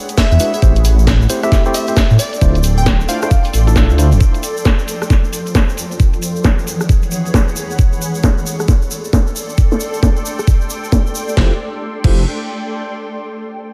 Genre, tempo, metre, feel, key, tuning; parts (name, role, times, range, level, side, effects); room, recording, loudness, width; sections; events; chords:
UK garage, two-step garage; 134 BPM; 4/4; swing 62% on 16ths; F major; A4 = 440 Hz
granular cloud pad; texture; 0.0-13.1 s; E3 to C6; -27 LUFS; equal; built-in reverb, lush chorus, sidechain pumping
garage drum kit; drums; 0.1-12.2 s; crash cymbal, hi-hat, rim click, snare drum; -23 LUFS; equal; low-pass filter on hats, studio reverb, low-pass filter on snare, low-pass filter on cymbals
egg shaker; percussion; 0.1-11.4 s; -30 LUFS; equal
glassy wavetable pluck; melody; 0.2-3.4 s; D5 to G5; -26 LUFS; equal; chorus, delay
electronic kick drum; drums; 0.2-12.2 s; -15 LUFS; equal; studio reverb
dark detuned saw bass; bass; 0.3-4.2, 11.4-12.2 s; D1 to A2; -14 LUFS; equal
tine electric piano; stabs; 0.4-4.1, 11.4-12.2 s; G#3 to E5; -24 LUFS; equal; delay
light reverb; -14 LUFS; mono
0.0-11.4 A section; 11.4-13.2 B section
filter sweep on drum 0.0-11.4
0.0 E7; 0.6 Am7; 2.2 Dm7; 4.2 Fadd9; 5.8 E; 7.8 Am7; 11.4 Fmaj9